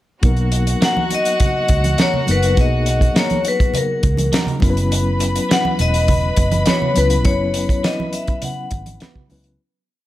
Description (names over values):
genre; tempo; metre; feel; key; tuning
lush 1970s-style soul; 103 BPM; 4/4; straight; B major; A4 = 440 Hz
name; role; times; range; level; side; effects
warm studio violin section; second line; 0.2-9.0 s; F#4 to B5; -26 LUFS; left 1 dB; none
mellow reed electric piano; accompaniment; 0.2-9.6 s; F#3 to B4; -24 LUFS; left 2 dB; fast tremolo
vintage muted fingered electric bass; bass; 0.2-9.6 s; E1 to C#2; -18 LUFS; equal; none
warm soul drum kit; drums; 0.2-9.6 s; hi-hat, kick drum, snare drum; -19 LUFS; equal; none
vibraphone with hard mallets; melody; 0.8-9.0 s; A#4 to F#5; -21 LUFS; left 3 dB; none
electric guitar through a small old amp; riff; 0.8-9.2 s; A#3 to B4; -28 LUFS; right 6 dB; lush chorus
congas; percussion; 1.0-9.4 s; none; -25 LUFS; right 4 dB; none
room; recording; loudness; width
small room ambience; none; -14 LUFS; side -14 dB against mid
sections
0.2-9.6 verse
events
fade-out 7.3-9.6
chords
0.2 Bmaj7; 4.6 F#7sus4